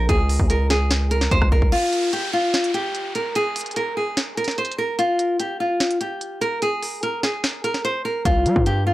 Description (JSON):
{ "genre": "hip hop, trap", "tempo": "147 BPM", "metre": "4/4", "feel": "half-time", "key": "unclear", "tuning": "A4 = 440 Hz", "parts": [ { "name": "nylon-string guitar", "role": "melody", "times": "0.0-8.9 s", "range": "F4 to C5", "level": "-21 LUFS", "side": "equal", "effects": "analog delay" }, { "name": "distorted 808-style bass", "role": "bass", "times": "0.0-1.7, 8.3-8.9 s", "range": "C2 to G3", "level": "-20 LUFS", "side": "equal", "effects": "distortion" }, { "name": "trap drum kit", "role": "drums", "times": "0.1-8.8 s", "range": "hi-hat, kick drum, rim click, snare drum", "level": "-23 LUFS", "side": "equal", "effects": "none" }, { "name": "downlifter", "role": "sound effects", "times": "1.7-5.0 s", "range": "none", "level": "-31 LUFS", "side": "equal", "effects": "none" } ], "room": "little or no reverb", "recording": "dry, gritty hardware recording, transformer saturation", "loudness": "-19 LUFS", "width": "side -16 dB against mid", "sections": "0.0-1.7 A section; 1.7-8.9 B section", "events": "break 1.7-8.3", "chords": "0.1 Db5; 1.7 N.C.; 8.3 C5", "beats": "| 0.09 0.50 0.91 1.31 | 1.72 2.13 2.54 2.95 | 3.35 3.76 4.17 4.58 | 4.99 5.40 5.80 6.21 | 6.62 7.03 7.44 7.84 | 8.25 8.66" }